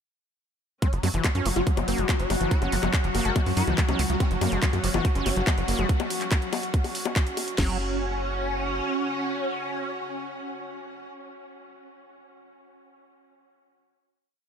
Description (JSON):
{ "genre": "psychedelic trance", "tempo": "142 BPM", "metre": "4/4", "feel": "straight", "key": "unclear", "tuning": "A4 = 440 Hz", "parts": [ { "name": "swarming rave lead", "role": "melody", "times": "0.8-10.9 s", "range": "F#3 to A#4", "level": "-32 LUFS", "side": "right 1 dB", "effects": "chorus, phaser, sidechain pumping, analog delay" }, { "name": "evolving wavetable pad", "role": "sustained chords", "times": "1.4-5.9 s", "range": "F#3 to F#4", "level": "-33 LUFS", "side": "left 2 dB", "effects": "phaser, built-in reverb, sidechain pumping" }, { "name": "overdriven acid bass", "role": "riff", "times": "0.8-7.8 s", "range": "E3 to C#4", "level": "-33 LUFS", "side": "equal", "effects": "distortion, auto-pan, sidechain pumping, analog delay" }, { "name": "big-room dance drum kit", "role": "drums", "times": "0.8-7.6 s", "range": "bongos, handclaps, hi-hat", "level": "-30 LUFS", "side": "left 3 dB", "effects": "overdrive" }, { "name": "garage drum kit", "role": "drums", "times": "0.8-7.7 s", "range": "crash cymbal, kick drum, snare drum", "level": "-24 LUFS", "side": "equal", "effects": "overdrive" }, { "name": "rich chamber string section", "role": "texture", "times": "0.8-11.1 s", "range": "C#4 to F#5", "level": "-35 LUFS", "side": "right 1 dB", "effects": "sidechain pumping" }, { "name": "tight sequencer bass", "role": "bass", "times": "0.9-8.8 s", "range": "F#1 to F#2", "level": "-28 LUFS", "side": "equal", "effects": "none" } ], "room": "light reverb, digital ambience", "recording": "none", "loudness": "-23 LUFS", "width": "side -8 dB against mid", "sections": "0.8-7.6 drop; 7.6-11.0 final chord", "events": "drop 0.8-7.6", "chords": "0.8 F#5" }